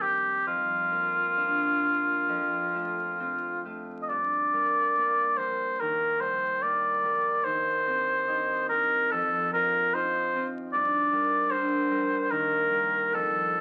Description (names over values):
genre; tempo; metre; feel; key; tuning
classical, romantic duo for oboe and harp; 65-77 BPM; 4/4; rubato; unclear; A4 = 440 Hz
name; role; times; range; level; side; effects
warm oboe; melody; 0.0-13.6 s; F4 to Eb5; -27 LUFS; equal; none
concert harp; accompaniment; 0.0-13.6 s; Eb2 to Bb4; -36 LUFS; equal; none
room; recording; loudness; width
light reverb; very old 78 rpm record, vinyl crackle; -27 LUFS; mono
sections
0.0-13.6 A section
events
none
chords
0.5 Bb/F; 2.3 F; 4.1 Gm; 5.8 Eb; 7.4 Cm/Eb; 9.1 F5; 10.7 Gm; 12.3 Eb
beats
| 0.47 1.38 2.29 3.20 | 4.09 4.96 5.80 6.63 | 7.45 8.27 9.11 9.93 | 10.72 11.50 12.30 13.13